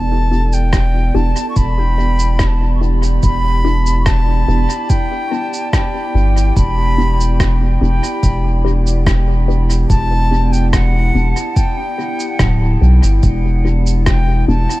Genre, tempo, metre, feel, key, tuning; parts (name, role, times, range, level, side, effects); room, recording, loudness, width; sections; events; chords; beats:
ambient dub; 72 BPM; 4/4; straight; E minor; A4 = 441 Hz
bright silver concert flute; melody; 0.0-14.8 s; F#5 to C#6; -22 LUFS; left 1 dB; dub echo
warbly tape-like pad; sustained chords; 0.0-14.8 s; B3 to D5; -24 LUFS; right 2 dB; chorus, built-in reverb
soft dub sub bass; bass; 0.0-14.7 s; D1 to B1; -14 LUFS; equal
filtered dub chord stab; stabs; 0.3-14.7 s; B3 to G4; -25 LUFS; left 2 dB; phaser, dub echo
electronic cabasa and rim click; drums; 0.5-14.8 s; -24 LUFS; equal; dub echo
electronic kick drum; drums; 0.7-14.2 s; -16 LUFS; equal
little or no reverb; -12 LUFS; side -17 dB against mid
0.0-14.8 A section
0.0 Em7
0.73 1.56 2.40 | 3.23 4.06 4.90 5.73 | 6.56 7.40 8.23 9.06 | 9.90 10.73 11.56 12.40 | 13.23 14.06